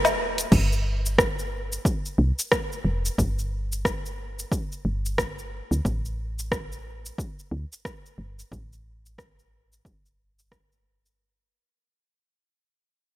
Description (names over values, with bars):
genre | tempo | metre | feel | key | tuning
organic downtempo | 90 BPM | 4/4 | swing 59% on 16ths | unclear | A4 = 440 Hz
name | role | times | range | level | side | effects
woody FM bass | bass | 0.0-11.1 s | E1 to D2 | -26 LUFS | equal | none
deep house drum kit | drums | 0.0-11.2 s | crash cymbal, hi-hat, rim click, shaker, woodblock | -26 LUFS | equal | overdrive
electronic kick drum | drums | 0.5-10.7 s | none | -26 LUFS | equal | overdrive
room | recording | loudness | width
moderate lush hall reverb, RT60 2.6 s | none | -24 LUFS | side -15 dB against mid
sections
0.5-11.2 A section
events
band accent 0.0; fade-out 0.5-11.2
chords
none